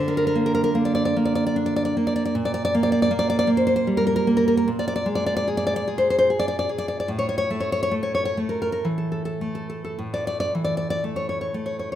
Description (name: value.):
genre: romantic piece for solo classical guitar.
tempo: 50-81 BPM.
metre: 3/4.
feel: rubato.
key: unclear.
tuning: A4 = 440 Hz.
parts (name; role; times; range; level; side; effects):
nylon-string guitar; solo; 0.0-12.0 s; A2 to D5; -20 LUFS; equal; none.
room: moderate scoring stage reverb, RT60 1.8 s.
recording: minimal, uncompressed stereo recording.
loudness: -20 LUFS.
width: side -11 dB against mid.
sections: 0.0-12.0 A section.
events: none.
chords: 0.0 Bb/D; 2.3 Gm/Bb; 4.7 Bb7; 7.1 A5.